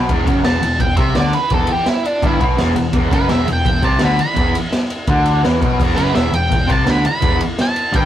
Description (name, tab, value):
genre	garage rock duo or trio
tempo	168 BPM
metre	4/4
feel	straight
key	E minor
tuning	A4 = 441 Hz
part	fuzz guitar	riff	0.0-8.1 s	E2 to E3	-18 LUFS	left 1 dB	distortion
part	growling picked electric bass	bass	0.0-8.1 s	E1 to E2	-20 LUFS	equal	overdrive
part	raw garage drum kit	drums	0.1-8.0 s	crash cymbal, kick drum, ride cymbal, snare drum	-18 LUFS	equal	none
part	octave-fuzz lead guitar	melody	0.5-8.1 s	D4 to B5	-20 LUFS	right 2 dB	distortion
room	light reverb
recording	rough rehearsal-room recording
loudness	-13 LUFS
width	side -11 dB against mid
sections	0.1-8.1 A section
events	lead electric guitar solo 0.1-8.1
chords	none